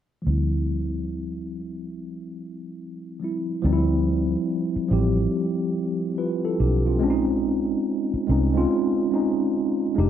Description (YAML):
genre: R&B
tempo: 71 BPM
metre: 4/4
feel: swing 64% on 16ths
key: unclear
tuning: A4 = 439 Hz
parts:
  - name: mellow tine electric piano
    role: accompaniment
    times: 0.2-10.1 s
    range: F3 to B4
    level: -23 LUFS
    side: equal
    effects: medium stereo tremolo, low-pass filter
  - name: vintage muted fingered electric bass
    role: bass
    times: 0.3-10.1 s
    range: F1 to D2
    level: -23 LUFS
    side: equal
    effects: none
room: moderate echo chamber reverb, RT60 1.2 s, digital ambience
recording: none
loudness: -21 LUFS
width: side -10 dB against mid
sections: 0.2-3.6 A section; 3.6-10.1 B section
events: filter sweep on tine electric piano 0.2-3.6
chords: 0.2 Dm9; 7.0 Bbm9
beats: | 0.25 1.09 1.94 2.78 | 3.63 4.47 5.32 6.16 | 7.01 7.85 8.70 9.54